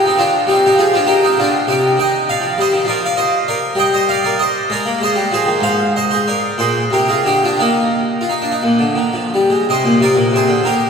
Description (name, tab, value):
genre	classical, baroque-style suite movement for harpsichord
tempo	57-68 BPM (dotted quarters)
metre	6/8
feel	rubato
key	Eb major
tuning	A4 = 439 Hz
part	harpsichord	solo	0.0-10.9 s	Ab2 to G5	-12 LUFS	equal	none
room	wet church reverb, RT60 3.0 s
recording	none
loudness	-13 LUFS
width	side -6 dB against mid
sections	0.0-9.7 A section; 9.7-10.9 A section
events	none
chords	0.2 Cm/Eb; 2.0 Eb; 2.9 Bb/F; 3.8 Eb/G; 4.7 Ab; 6.6 Bb7; 7.6 Eb; 9.7 Bb9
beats	| 0.19 1.09 | 1.99 2.88 | 3.78 4.69 | 5.63 6.58 | 7.59 8.62 | 9.66 10.63